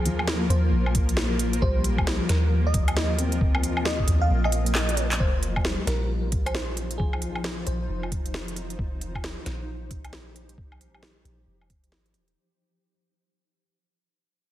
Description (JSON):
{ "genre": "future garage", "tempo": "134 BPM", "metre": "4/4", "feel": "swing 62% on 16ths", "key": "unclear", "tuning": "A4 = 441 Hz", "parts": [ { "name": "bell-like FM electric piano", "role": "melody", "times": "0.0-8.0 s", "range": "Ab4 to F5", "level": "-33 LUFS", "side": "right 1 dB", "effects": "chorus, phaser, dub echo" }, { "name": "granular cloud pad", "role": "sustained chords", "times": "0.0-12.3 s", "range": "F3 to C5", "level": "-32 LUFS", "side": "left 1 dB", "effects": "built-in reverb, sidechain pumping" }, { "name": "soft 808-style bass", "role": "bass", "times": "0.0-12.4 s", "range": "Eb1 to Eb2", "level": "-26 LUFS", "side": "equal", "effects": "sidechain pumping" }, { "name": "felt-muted upright piano", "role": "accompaniment", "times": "0.1-8.8 s", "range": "F3 to C4", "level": "-33 LUFS", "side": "left 3 dB", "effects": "sidechain pumping, dub echo" }, { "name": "organic electronic drum kit", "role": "drums", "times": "0.1-12.3 s", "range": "handclaps, hi-hat, snare drum, woodblock", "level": "-30 LUFS", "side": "equal", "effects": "soft clipping on snare" }, { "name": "electronic kick drum", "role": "drums", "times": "1.0-11.8 s", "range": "none", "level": "-26 LUFS", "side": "equal", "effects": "none" } ], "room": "light reverb", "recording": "dense, heavily limited modern master, vinyl crackle", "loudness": "-22 LUFS", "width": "side -13 dB against mid", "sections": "0.0-5.2 A section; 5.2-12.4 B section", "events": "kick drops out 4.3-5.2; drum fill 4.8-5.2; fade-out 5.2-12.4", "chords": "0.0 Bb5; 5.2 F7(no3)" }